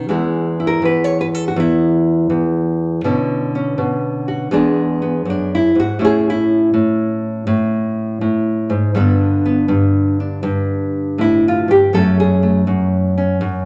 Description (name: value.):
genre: solo jazz.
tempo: 81 BPM.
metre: 4/4.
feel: swing 67% on 8ths.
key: E major.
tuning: A4 = 440 Hz.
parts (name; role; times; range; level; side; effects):
nylon-string guitar; solo; 0.0-13.7 s; E2 to C#5; -16 LUFS; equal; none.
room: wet large studio reverb, RT60 1.2 s.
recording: none.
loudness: -16 LUFS.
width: mono.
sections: 0.1-13.7 A section.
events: nylon-string guitar solo 0.1-13.7.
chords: 0.1 Eadd9; 3.0 Bmadd9; 4.5 E9; 6.0 Amaj7; 9.0 Gadd9; 11.9 F#m.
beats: | 0.08 0.82 1.56 2.30 | 3.04 3.78 4.52 5.26 | 6.00 6.74 7.48 8.22 | 8.96 9.70 10.44 11.18 | 11.92 12.66 13.40.